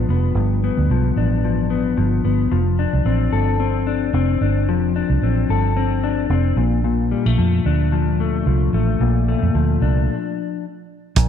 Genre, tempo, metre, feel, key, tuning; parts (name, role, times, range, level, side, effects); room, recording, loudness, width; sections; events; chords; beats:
indie pop, bedroom pop; 111 BPM; 4/4; swing 55% on 16ths; A4 = 444 Hz
mellow electric guitar; accompaniment; 0.0-11.3 s; G2 to A4; -20 LUFS; left 9 dB; lush chorus, vibrato effect
vintage muted fingered electric bass; bass; 0.0-11.3 s; F1 to F2; -18 LUFS; right 2 dB
damped 70s drum kit; drums; 11.2-11.3 s; hi-hat, kick drum; -16 LUFS; right 7 dB
moderate echo chamber reverb, RT60 1.7 s, small room reverb; 1960s-style stereo with parts hard left and right; -16 LUFS; side -8 dB against mid
0.0-11.2 A section
stop 10.1-11.2
0.0 G7; 2.5 F6; 6.6 Bbmaj7
| 0.36 0.90 1.44 1.98 | 2.52 3.06 3.60 4.14 | 4.68 5.22 5.76 6.30 | 6.84 7.38 7.92 8.46 | 9.00 9.54 10.09 10.63 | 11.17